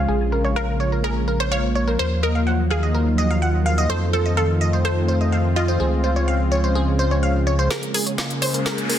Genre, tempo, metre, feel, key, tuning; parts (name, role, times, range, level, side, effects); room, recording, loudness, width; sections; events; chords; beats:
progressive house; 126 BPM; 4/4; straight; Bb minor; A4 = 440 Hz
lush unison pad; sustained chords; 0.0-9.0 s; Db3 to Ab4; -23 LUFS; equal; chorus
glassy wavetable pluck; arpeggios; 0.0-8.9 s; Ab4 to Gb5; -25 LUFS; equal; chorus, cassette tape, dub echo
saturated sub bass; bass; 0.0-7.7 s; Bb1 to F2; -21 LUFS; equal
wide unison pluck; melody; 0.6-9.0 s; F4 to Db5; -26 LUFS; right 1 dB; phaser, dub echo
deep house drum kit; drums; 7.7-9.0 s; hi-hat, snare drum; -24 LUFS; equal; low-pass filter on cymbals, low-pass filter on snare, low-pass filter on hats
riser; sound effects; 8.1-9.0 s; -31 LUFS; equal
light reverb; dense, heavily limited modern master; -18 LUFS; side -10 dB against mid
0.0-7.7 A section; 7.7-9.0 B section
filter sweep on synth arpeggio sound 0.0-7.7; filter sweep on analog synth pad 0.0-7.7; build-up 7.7-9.0; drum fill 7.7-9.0; riser 8.1-9.0
0.1 Bbm7; 2.0 Ebmadd9; 3.9 F7; 5.8 Dbmaj7; 7.7 Bbm7
| 0.09 0.56 1.04 1.51 | 1.99 2.47 2.94 3.42 | 3.90 4.37 4.85 5.32 | 5.80 6.28 6.75 7.23 | 7.71 8.18 8.66